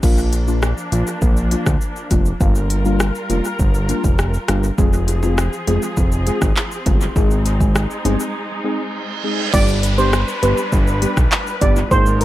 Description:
dancehall; 101 BPM; 4/4; straight; A4 = 440 Hz
deep mellow chord stab; accompaniment; 0.0-12.2 s; F3 to Ab4; -22 LUFS; left 2 dB; chorus
warm studio string section; sustained chords; 0.0-12.2 s; F3 to B4; -27 LUFS; equal; sidechain pumping
fat analog bass; bass; 0.0-12.2 s; F1 to D2; -18 LUFS; equal
afro-pop drum kit; drums; 0.0-12.2 s; crash cymbal, handclaps, hi-hat, kick drum, rim click, shaker; -18 LUFS; equal
bongos; percussion; 4.8-12.1 s; -33 LUFS; right 4 dB
reverse cymbal and downlifter; sound effects; 8.7-12.2 s; -27 LUFS; right 3 dB
steel pan; melody; 9.5-12.2 s; Bb4 to D5; -20 LUFS; right 3 dB; dub echo
digital ambience; echo-heavy mix; -15 LUFS; side -15 dB against mid
0.0-9.5 A section; 9.5-12.2 B section
break 8.3-9.5; reverse cymbal 8.7-9.5
0.0 Bb; 2.4 Gm7; 4.8 Fm; 7.2 Ab; 9.5 G
| 0.03 0.62 1.22 1.81 | 2.41 3.00 3.60 4.19 | 4.78 5.38 5.97 6.57 | 7.16 7.75 8.35 8.94 | 9.54 10.13 10.72 11.32 | 11.91

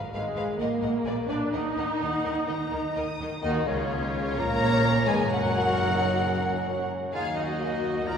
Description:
classical; 129 BPM; 4/4; uneven beats, rubato; Eb minor, F# major from 3.4 s; A4 = 438 Hz
rich symphonic violin section; melody; 0.1-8.2 s; C#5 to Eb6; -34 LUFS; left 2 dB
warm symphonic violin section; second line; 0.1-8.2 s; E#4 to F5; -33 LUFS; left 1 dB
warm symphonic viola section; accompaniment; 0.1-8.2 s; C#3 to F#4; -31 LUFS; right 2 dB
rich studio cello section; bass; 0.1-8.2 s; C#2 to Eb3; -35 LUFS; right 1 dB
rich studio double bass section; bass; 0.1-8.2 s; F#1 to Eb2; -33 LUFS; right 1 dB
warm French horn section; sustained chords; 0.2-8.2 s; C#3 to F#4; -33 LUFS; left 2 dB
clear oboe; second line; 3.4-8.2 s; C#4 to A#4; -34 LUFS; equal
mellow small flute group; second line; 3.4-8.2 s; C#5 to A#5; -32 LUFS; left 1 dB
dark bassoon; accompaniment; 4.4-8.2 s; C#4 to F#4; -33 LUFS; right 1 dB
wet church reverb, RT60 3.7 s; heard from further back in the room; -24 LUFS; side -7 dB against mid
0.0-3.4 A section; 3.4-8.2 B section
0.0 Fdim/Ab; 0.6 Eb5/Bb; 1.1 Bb(b9); 1.5 Ebm; 3.4 C#add9; 4.4 C#; 5.3 F#; 7.1 D#m
0.14 0.59 1.05 | 1.53 2.01 2.49 2.97 | 3.44 3.91 4.39 4.85 | 5.30 5.76 6.21 6.67 | 7.13 7.59 8.06

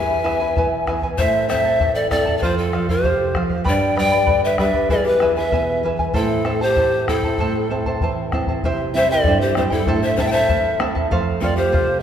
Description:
andean folk, Andean ensemble; 97 BPM; 2/4; straight; A minor; A4 = 440 Hz
breathy bright pan flute; melody; 0.0-12.0 s; A4 to G#5; -21 LUFS; equal
breathy reedy large pan pipes; second line; 0.0-12.0 s; E4 to E5; -24 LUFS; left 4 dB
charango; accompaniment; 0.0-12.0 s; E4 to B5; -24 LUFS; right 1 dB
nylon-string guitar; accompaniment; 0.0-12.0 s; E2 to F4; -24 LUFS; right 2 dB
bombo; percussion; 0.3-11.9 s; -25 LUFS; left 1 dB
wet concert hall reverb, RT60 2.4 s; minimal, uncompressed stereo recording; -16 LUFS; side -9 dB against mid
0.0-8.6 A section; 8.6-12.0 B section
0.0 E; 1.2 Am; 2.4 F; 3.7 G; 4.9 E; 6.1 Am; 8.6 C; 9.9 Am; 11.1 F
0.56 | 1.18 1.80 | 2.42 3.04 | 3.67 4.29 | 4.91 5.53 | 6.15 6.77 | 7.39 8.01 | 8.63 9.25 | 9.87 10.49 | 11.11 11.73

